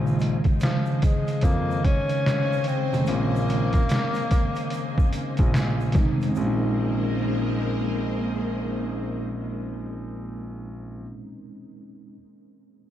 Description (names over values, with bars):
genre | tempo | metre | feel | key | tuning
lo-fi hip hop | 73 BPM | 4/4 | swing 64% on 16ths | Bb minor | A4 = 440 Hz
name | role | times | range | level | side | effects
mellow tine electric piano | accompaniment | 0.0-12.2 s | Db3 to C5 | -28 LUFS | equal | medium stereo tremolo, cassette tape
string machine, cellos | sustained chords | 0.0-10.4 s | Db3 to Ab5 | -33 LUFS | left 1 dB | ensemble chorus
dark baby grand piano | bass | 0.0-11.0 s | F1 to F2 | -28 LUFS | equal | none
egg shaker | percussion | 0.1-6.7 s | none | -54 LUFS | right 7 dB | none
trip hop sampler-style drum kit | drums | 0.2-6.4 s | hi-hat, kick drum, snare drum | -24 LUFS | equal | overdrive
breathy tenor saxophone | melody | 0.6-5.5 s | F3 to Db4 | -30 LUFS | left 2 dB | diffuse ambient delay
room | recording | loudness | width
wet cathedral reverb, RT60 6.5 s | dreamy mix soaked in reverb, cassette tape | -22 LUFS | side -11 dB against mid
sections
0.0-6.4 A section; 6.4-9.7 B section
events
none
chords
0.0 Bbm11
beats
0.61 1.43 2.25 | 3.07 3.90 4.72 5.54 | 6.36 7.18 8.01 8.83